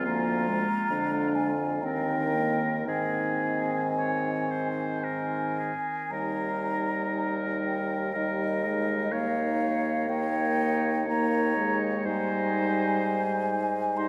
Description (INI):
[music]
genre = classical, slow romantic movement for wind quintet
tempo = 54-71 BPM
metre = 3/4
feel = rubato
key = Ab major, Eb major from 6.1 s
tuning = A4 = 440 Hz
[part]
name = clear oboe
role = second line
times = 0.0-14.1 s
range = F4 to Db5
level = -36 LUFS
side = equal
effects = none
[part]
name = clear clarinet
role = accompaniment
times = 0.0-14.1 s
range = Ab3 to Eb4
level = -35 LUFS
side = equal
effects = none
[part]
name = clear bassoon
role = bass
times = 0.0-14.1 s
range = D2 to Ab2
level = -35 LUFS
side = equal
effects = none
[part]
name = mellow hollow concert flute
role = melody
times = 0.1-14.1 s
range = Eb5 to C6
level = -34 LUFS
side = equal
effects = none
[part]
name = warm French horn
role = accompaniment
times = 0.1-14.1 s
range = D3 to Bb3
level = -35 LUFS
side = equal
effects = none
[sound]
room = wet cathedral reverb, RT60 5.8 s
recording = in a vast, echoing space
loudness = -28 LUFS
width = mono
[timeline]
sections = 0.0-6.1 A section; 6.1-14.1 B section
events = none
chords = 0.1 Ddim; 1.8 Eb; 2.9 Ab; 6.1 Eb; 9.1 Eb7; 12.1 Abmaj7